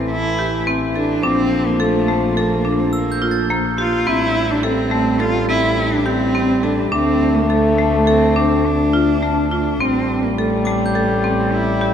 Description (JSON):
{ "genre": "contemporary instrumental, chamber music in an uneven meter", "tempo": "105 BPM", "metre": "5/4", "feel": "straight", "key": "A phrygian", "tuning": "A4 = 440 Hz", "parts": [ { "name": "warm cello", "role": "melody", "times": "0.0-11.9 s", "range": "A3 to F4", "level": "-20 LUFS", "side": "right 1 dB", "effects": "none" }, { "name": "warm French horn", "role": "second line", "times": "0.0-11.9 s", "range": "E3 to A3", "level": "-22 LUFS", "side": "left 2 dB", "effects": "none" }, { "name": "marimba with hard mallets", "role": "arpeggios", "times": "0.0-11.9 s", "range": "A3 to A4", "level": "-20 LUFS", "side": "equal", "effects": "none" }, { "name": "rich double bass", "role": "bass", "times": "0.0-11.9 s", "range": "A1 to D2", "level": "-23 LUFS", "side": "equal", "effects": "none" }, { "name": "glockenspiel with brass mallets", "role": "texture", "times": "0.0-4.6, 10.7-11.9 s", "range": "D6 to A6", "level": "-30 LUFS", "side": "right 2 dB", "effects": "none" } ], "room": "wet cathedral reverb, RT60 6.2 s", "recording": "in a vast, echoing space", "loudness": "-15 LUFS", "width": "side -8 dB against mid", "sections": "0.0-11.9 A section", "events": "none", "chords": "0.0 Am7; 1.2 Bbmaj7; 4.1 Am7; 6.9 Dm7; 9.8 Am7" }